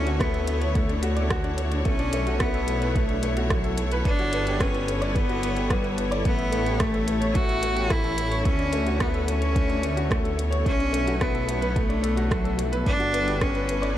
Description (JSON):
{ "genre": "piano and strings electronica", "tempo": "109 BPM", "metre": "4/4", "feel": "straight", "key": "B minor", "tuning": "A4 = 440 Hz", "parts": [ { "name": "clear cello", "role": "melody", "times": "0.0-14.0 s", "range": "F#3 to F#4", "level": "-28 LUFS", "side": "equal", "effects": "shimmer reverb" }, { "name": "warm symphonic string section", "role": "sustained chords", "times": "0.0-14.0 s", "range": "B3 to C#5", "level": "-33 LUFS", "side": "left 1 dB", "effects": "sidechain pumping, shimmer reverb" }, { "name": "bright upright piano", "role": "riff", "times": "0.0-14.0 s", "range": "A3 to D5", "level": "-29 LUFS", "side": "left 2 dB", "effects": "tape echo, shimmer reverb" }, { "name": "dark detuned saw bass", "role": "bass", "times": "0.0-14.0 s", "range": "G1 to D2", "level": "-28 LUFS", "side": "equal", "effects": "sidechain pumping" }, { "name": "minimal click drum kit", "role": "drums", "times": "0.1-13.9 s", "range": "hi-hat, rim click", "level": "-32 LUFS", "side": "right 1 dB", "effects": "studio reverb" }, { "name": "electronic kick drum", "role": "drums", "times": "0.2-13.5 s", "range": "none", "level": "-26 LUFS", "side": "equal", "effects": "overdrive, studio reverb" } ], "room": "light reverb, small room ambience", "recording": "none", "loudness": "-22 LUFS", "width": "side -12 dB against mid", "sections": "0.0-14.0 A section", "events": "none", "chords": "0.0 Dmaj7; 1.9 Bm7; 4.1 Gmaj7; 6.3 A7; 8.5 Dmaj7; 10.7 Bm7; 12.9 Gmaj7" }